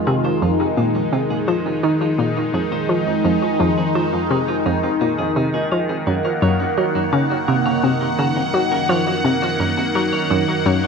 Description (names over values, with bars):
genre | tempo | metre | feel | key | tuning
ambient, sequencer-driven space music | 85 BPM | 4/4 | straight | F phrygian | A4 = 444 Hz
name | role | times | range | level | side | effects
phased analog pad | sustained chords | 0.0-10.9 s | Eb3 to Gb5 | -19 LUFS | equal | phaser, chorus
analog pluck | riff | 0.0-10.9 s | F2 to Gb3 | -20 LUFS | equal | chorus, tape echo
analog drone | bass | 0.2-10.9 s | F2 to Gb2 | -37 LUFS | equal | none
clean electric guitar | arpeggios | 0.1-10.9 s | Eb4 to F5 | -32 LUFS | right 2 dB | auto-pan, tape echo
room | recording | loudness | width
moderate plate reverb, RT60 3.1 s | cassette tape | -16 LUFS | side -5 dB against mid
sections
0.0-10.9 A section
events
fade-in on clean electric guitar 0.0-10.9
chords
0.0 Fm7; 6.1 Gb6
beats
| 0.42 1.13 1.83 2.54 | 3.25 3.95 4.66 5.36 | 6.07 6.78 7.48 8.19 | 8.89 9.60 10.30